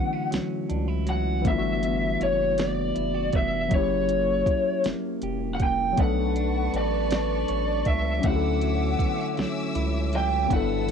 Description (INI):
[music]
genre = slow six-eight R&B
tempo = 53 BPM (dotted quarters)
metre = 6/8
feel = straight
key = unclear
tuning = A4 = 441 Hz
[part]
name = lead guitar through a small cranked amp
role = melody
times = 0.0-10.9 s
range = C#5 to G5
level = -26 LUFS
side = equal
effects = overdrive, cassette tape
[part]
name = clean electric guitar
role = second line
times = 0.0-10.9 s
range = G2 to C#5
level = -32 LUFS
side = right 12 dB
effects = warbly pitch drift, cassette tape
[part]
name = tine electric piano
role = accompaniment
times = 0.0-10.9 s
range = E3 to A4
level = -29 LUFS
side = left 12 dB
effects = medium stereo tremolo, cassette tape
[part]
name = round analog bass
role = bass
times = 0.3-10.9 s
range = E1 to D2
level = -29 LUFS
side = right 1 dB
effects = none
[part]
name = smooth R&B drum kit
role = drums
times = 0.3-10.9 s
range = hi-hat, kick drum, snare drum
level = -27 LUFS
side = right 1 dB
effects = cassette tape
[part]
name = warm symphonic string section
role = sustained chords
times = 6.0-10.9 s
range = C#4 to E6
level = -35 LUFS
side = left 1 dB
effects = cassette tape
[sound]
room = light reverb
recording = home recording on cassette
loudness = -22 LUFS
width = side -6 dB against mid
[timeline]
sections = 0.0-10.9 A section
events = none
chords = 0.0 Dmaj9; 1.4 Gmaj13; 3.7 F#7b9; 6.0 Bm9; 8.2 Dmaj9